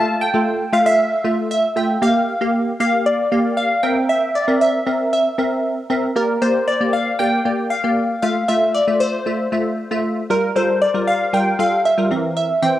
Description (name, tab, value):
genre	pop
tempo	116 BPM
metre	4/4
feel	straight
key	F major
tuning	A4 = 439 Hz
part	glassy wavetable pluck	melody	0.0-12.8 s	Bb4 to G5	-18 LUFS	equal	chorus, cassette tape, analog delay
part	wavetable chord stab	accompaniment	0.0-12.8 s	E3 to F5	-20 LUFS	equal	cassette tape
room	moderate spring reverb, RT60 2.3 s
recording	home recording on cassette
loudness	-16 LUFS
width	side -13 dB against mid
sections	0.0-6.2 A section; 6.2-12.8 B section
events	none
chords	0.0 Fmaj7/A; 2.0 Gm7; 3.8 C7; 6.2 Bb6; 8.2 Fmaj7/A; 10.3 Gm7; 12.1 C7